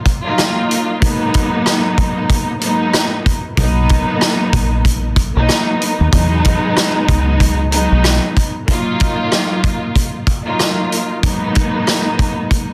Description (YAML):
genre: hip hop, boom-bap hip-hop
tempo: 94 BPM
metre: 4/4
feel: swing 59% on 16ths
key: Eb minor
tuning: A4 = 441 Hz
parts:
  - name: dark studio string section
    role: accompaniment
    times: 0.0-12.7 s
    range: Ab2 to F4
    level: -19 LUFS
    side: equal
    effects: cassette tape, high-pass filter, low-pass filter
  - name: vintage drum kit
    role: drums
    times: 0.1-12.7 s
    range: hi-hat, kick drum, rim click, snare drum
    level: -18 LUFS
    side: equal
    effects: none
  - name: deep dub fingered electric bass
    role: bass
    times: 3.6-8.2 s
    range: A#1 to E2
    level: -18 LUFS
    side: equal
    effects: none
room: little or no reverb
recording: dense, heavily limited modern master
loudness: -15 LUFS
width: mono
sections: 0.0-8.7 A section; 8.7-12.7 B section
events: break 0.0-3.6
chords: 0.0 Ebmadd9; 1.0 Abm7; 3.6 Bmaj7; 6.1 Emaj9; 8.7 Ebmadd9; 11.2 Abm7